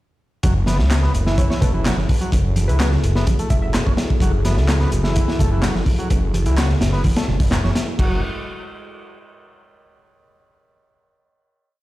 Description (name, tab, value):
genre	breakbeat, breaks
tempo	127 BPM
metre	4/4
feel	straight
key	F# minor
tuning	A4 = 440 Hz
part	dark analog pad	sustained chords	0.8-8.2 s	E4 to A4	-31 LUFS	left 1 dB	chorus, sidechain pumping
part	combo organ	riff	0.4-8.2 s	E3 to C#4	-27 LUFS	right 1 dB	vintage 12-bit sampler grit, low-pass filter, ping-pong delay
part	phased detuned saw bass	bass	0.4-8.2 s	F#1 to C#2	-19 LUFS	equal	phaser
part	crunchy breakbeat drum kit	drums	0.4-8.1 s	crash cymbal, hi-hat, kick drum, snare drum	-20 LUFS	equal	none
part	congas	percussion	0.7-7.7 s	none	-26 LUFS	right 2 dB	none
part	electronic handclaps	drums	0.9-7.6 s	none	-28 LUFS	equal	overdrive
part	glassy wavetable pluck	melody	1.4-3.7 s	B4 to E5	-33 LUFS	equal	chorus, small speaker sound, ping-pong delay
room	little or no reverb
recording	played on a big sound system in a bare room, stone room reverb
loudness	-16 LUFS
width	side -17 dB against mid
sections	0.4-8.0 groove; 8.0-9.9 final chord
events	none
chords	0.4 F#m9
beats	| 0.44 0.91 1.38 1.85 | 2.33 2.80 3.27 3.74 | 4.21 4.69 5.16 5.63 | 6.11 6.58 7.05 7.52 | 8.00